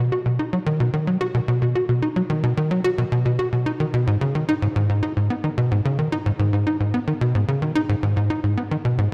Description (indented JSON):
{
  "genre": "ambient",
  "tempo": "110 BPM",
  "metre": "4/4",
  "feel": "straight",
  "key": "G# minor",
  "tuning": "A4 = 440 Hz",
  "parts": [
    { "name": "tight sequencer bass", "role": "solo", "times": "0.0-9.1 s", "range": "G#2 to F#4", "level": "-22 LUFS", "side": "equal", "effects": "subtle chorus, tape echo" }
  ],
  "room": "wet concert hall reverb, RT60 2.3 s",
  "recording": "none",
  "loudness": "-22 LUFS",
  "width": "mono",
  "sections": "0.0-9.1 A section",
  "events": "none",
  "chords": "none"
}